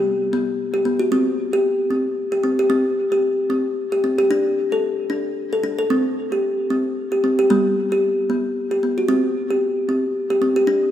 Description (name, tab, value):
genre	world meditative, meditative tuned percussion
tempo	113 BPM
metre	3/4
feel	swing 56% on 16ths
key	unclear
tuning	A4 = 440 Hz
part	kalimba	solo	0.0-10.9 s	G3 to A4	-18 LUFS	equal	diffuse ambient delay
room	wet echo chamber reverb, RT60 2.6 s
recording	none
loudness	-18 LUFS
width	side -10 dB against mid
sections	0.0-2.7 A section; 2.7-10.9 B section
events	none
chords	0.0 G; 1.1 C5; 4.3 D5; 5.9 C5; 7.5 G; 9.1 C5